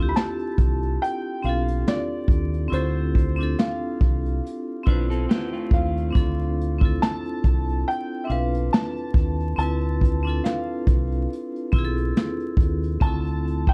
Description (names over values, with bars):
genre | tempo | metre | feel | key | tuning
lo-fi hip hop | 70 BPM | 4/4 | swing 56% on 16ths | D dorian | A4 = 436 Hz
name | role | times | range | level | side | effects
felt-muted upright piano | melody | 0.0-13.7 s | C5 to B5 | -33 LUFS | equal | low-pass filter, tape echo, plate reverb
vibraphone with hard mallets | accompaniment | 0.0-13.7 s | C4 to C5 | -31 LUFS | equal | cassette tape, low-pass filter, plate reverb
deep dub fingered electric bass | bass | 0.0-13.7 s | B1 to Eb2 | -27 LUFS | equal | none
vintage brush drum kit | drums | 0.2-13.7 s | hi-hat, kick drum, snare drum | -23 LUFS | equal | none
electric guitar at the edge of break-up | second line | 4.9-6.8 s | A3 to B4 | -36 LUFS | equal | spring reverb, low-pass filter, tape echo, plate reverb
room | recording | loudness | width
light reverb | dark, warm production, vinyl crackle | -23 LUFS | mono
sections
0.0-13.0 A section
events
none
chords
0.0 Dm7